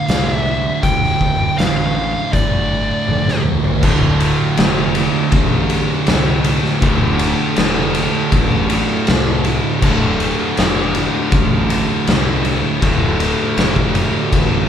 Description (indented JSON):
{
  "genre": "stoner and doom metal",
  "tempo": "80 BPM",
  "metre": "4/4",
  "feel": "straight",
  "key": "D minor",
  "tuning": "A4 = 440 Hz",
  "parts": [
    { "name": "fuzz lead guitar", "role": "melody", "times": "0.0-3.4 s", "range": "D5 to G5", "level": "-20 LUFS", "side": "equal", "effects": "distortion" },
    { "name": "thick fuzz guitar", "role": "riff", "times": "0.0-14.7 s", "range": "D2 to D3", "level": "-22 LUFS", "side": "left 4 dB", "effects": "distortion" },
    { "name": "thick fuzz guitar", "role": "riff", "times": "0.0-14.7 s", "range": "D2 to D3", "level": "-21 LUFS", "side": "right 8 dB", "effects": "distortion" },
    { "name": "fuzz fingered electric bass", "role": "bass", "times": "0.1-14.7 s", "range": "D1 to C2", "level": "-23 LUFS", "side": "left 1 dB", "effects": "overdrive" },
    { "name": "oversized low-tuned drum kit", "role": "drums", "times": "0.1-14.5 s", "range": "crash cymbal, hi-hat, kick drum, ride cymbal, snare drum, toms", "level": "-17 LUFS", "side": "left 1 dB", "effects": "none" },
    { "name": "raw garage guitar", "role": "riff", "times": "3.8-14.7 s", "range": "D2 to D3", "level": "-23 LUFS", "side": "left 1 dB", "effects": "overdrive" }
  ],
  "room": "light reverb",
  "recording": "band playing live in one room",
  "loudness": "-13 LUFS",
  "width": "side -8 dB against mid",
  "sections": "0.0-3.8 A section; 3.8-14.7 B section",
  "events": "drum fill 3.1-3.8",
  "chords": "0.0 Dm",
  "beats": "0.08 | 0.83 1.58 2.33 3.08 | 3.83 4.58 5.33 6.08 | 6.83 7.58 8.32 9.07 | 9.82 10.57 11.32 12.07 | 12.82 13.58 14.33"
}